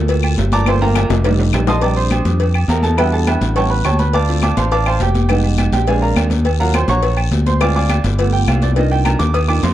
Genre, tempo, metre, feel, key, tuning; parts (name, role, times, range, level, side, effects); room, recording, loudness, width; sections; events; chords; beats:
Afro-Cuban jazz; 208 BPM; 4/4; straight; Bb major; A4 = 435 Hz
warm grand piano; accompaniment; 0.0-9.7 s; Gb3 to Eb6; -18 LUFS; right 3 dB
modern bright fingered electric bass; bass; 0.0-9.7 s; F1 to F2; -16 LUFS; equal
agogo bells and timbales; percussion; 0.1-9.7 s; -26 LUFS; right 5 dB
congas; percussion; 0.1-9.7 s; -24 LUFS; left 2 dB
cowbell and bongos; percussion; 0.1-9.7 s; -24 LUFS; left 4 dB
guiro; percussion; 0.1-9.7 s; -33 LUFS; left 11 dB
claves; percussion; 0.2-9.6 s; -27 LUFS; left 12 dB
moderate club reverb, RT60 0.5 s; dark, warm production; -13 LUFS; side -13 dB against mid
0.0-1.8 A section; 1.8-9.7 A section
grand piano solo 0.0-9.7; drum fill 0.7-1.8
0.0 Gm9; 1.2 F9; 1.8 Bb6; 3.0 Em7; 3.6 A7; 4.1 Dm7; 5.3 Fm7b5; 5.9 Bb7; 6.5 Ebm9; 7.6 Dm7b5; 8.2 G7; 8.8 Cm11
0.09 0.38 | 0.67 0.96 1.25 1.53 | 1.82 2.11 2.40 2.69 | 2.98 3.27 3.56 3.85 | 4.14 4.43 4.71 5.00 | 5.29 5.58 5.87 6.16 | 6.45 6.74 7.03 7.32 | 7.61 7.90 8.19 8.47 | 8.77 9.05 9.34 9.63